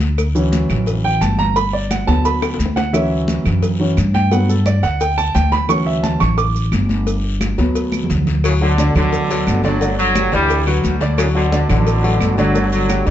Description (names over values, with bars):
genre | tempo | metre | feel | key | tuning
latin, salsa | 175 BPM | 4/4 | straight | unclear | A4 = 440 Hz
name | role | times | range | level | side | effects
upright bass | bass | 0.0-13.1 s | G1 to G2 | -18 LUFS | equal | none
congas | percussion | 0.0-13.1 s | none | -24 LUFS | equal | none
cowbell and bongos | percussion | 0.0-13.1 s | none | -28 LUFS | left 5 dB | none
guiro | percussion | 0.0-13.1 s | none | -34 LUFS | left 7 dB | none
maracas | percussion | 0.0-13.1 s | none | -36 LUFS | right 8 dB | none
claves | percussion | 0.2-13.1 s | none | -30 LUFS | right 6 dB | none
warm grand piano | accompaniment | 0.3-13.1 s | D3 to D6 | -19 LUFS | right 2 dB | none
warm baritone saxophone | second line | 8.4-13.1 s | D3 to F#3 | -24 LUFS | left 6 dB | none
bright trombone section | melody | 8.5-13.1 s | A2 to G3 | -19 LUFS | right 1 dB | plate reverb, analog delay
room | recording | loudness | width
light reverb | dark, warm production, nothing above 7.7 kHz | -14 LUFS | side -11 dB against mid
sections
0.0-8.4 A section; 8.4-13.1 B section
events
grand piano solo 0.0-8.4; drum fill 2.4-2.9, 7.9-8.4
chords
0.2 Dmaj7; 1.6 Gmaj7; 2.9 Dmaj7; 4.3 Gmaj7; 5.7 Dmaj7; 7.1 Gmaj7; 11.2 D; 12.6 Gmaj7(no3)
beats
| 0.18 0.52 0.87 1.21 | 1.56 1.90 2.25 2.59 | 2.94 3.28 3.63 3.97 | 4.32 4.66 5.00 5.35 | 5.69 6.04 6.38 6.72 | 7.07 7.41 7.75 8.10 | 8.44 8.78 9.13 9.47 | 9.81 10.15 10.50 10.84 | 11.18 11.52 11.87 12.21 | 12.55 12.89